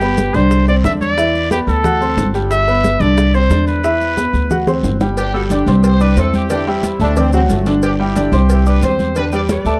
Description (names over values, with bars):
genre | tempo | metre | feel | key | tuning
latin, salsa | 180 BPM | 4/4 | straight | G major | A4 = 440 Hz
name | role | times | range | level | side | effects
clear trumpet | melody | 0.0-4.6 s | G4 to E5 | -20 LUFS | equal | none
clear grand piano | accompaniment | 0.0-9.8 s | D3 to F#6 | -21 LUFS | equal | none
upright bass | bass | 0.0-9.8 s | G1 to E2 | -18 LUFS | equal | none
bongos and cowbell | percussion | 0.0-9.7 s | none | -27 LUFS | equal | none
congas | percussion | 0.0-9.8 s | none | -25 LUFS | equal | none
maracas | percussion | 0.0-9.8 s | none | -39 LUFS | equal | none
guiro | percussion | 0.2-9.8 s | none | -39 LUFS | equal | none
clear horn section | melody | 5.2-9.8 s | C4 to D5 | -24 LUFS | equal | slapback echo
brilliant trombone section | second line | 7.0-7.7 s | A3 to D4 | -26 LUFS | equal | none
room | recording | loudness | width
light reverb | dark, warm production | -15 LUFS | mono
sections
0.0-5.2 A section; 5.2-9.8 B section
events
drum fill 4.5-5.2, 9.5-9.8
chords
0.0 G; 0.5 Cadd9; 1.2 E5; 1.8 D7; 2.5 G; 3.2 Cadd9; 3.8 E5; 4.5 G5; 5.8 Cadd9; 6.5 Em7; 7.2 D; 7.8 G5; 8.5 Cadd9; 9.2 Em7